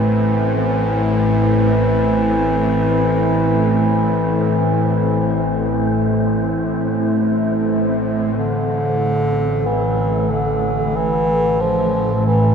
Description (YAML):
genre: dark ambient drone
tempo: free time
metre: none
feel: none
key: A minor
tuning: A4 = 435 Hz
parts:
  - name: warm bass clarinet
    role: melody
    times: 0.0-12.5 s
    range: D3 to F3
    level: -19 LUFS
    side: equal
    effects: tape echo
  - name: deep dark ambient pad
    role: sustained chords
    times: 0.0-12.5 s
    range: A3 to E5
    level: -21 LUFS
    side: equal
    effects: chorus, built-in reverb
  - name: bronze singing bowl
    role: arpeggios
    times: 0.0-3.0 s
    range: E4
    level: -35 LUFS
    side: left 1 dB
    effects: none
  - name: bowed-like drone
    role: drone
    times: 0.0-12.5 s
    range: A1 to A2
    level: -20 LUFS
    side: equal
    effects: built-in reverb
  - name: wind-like tuned noise texture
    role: texture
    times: 0.0-12.5 s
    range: A3 to C5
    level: -26 LUFS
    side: equal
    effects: built-in reverb
room: wet huge ambient reverb, RT60 7.6 s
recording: none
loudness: -15 LUFS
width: side -6 dB against mid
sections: 0.0-8.4 A section; 8.4-12.5 B section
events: none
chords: 0.0 A5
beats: free time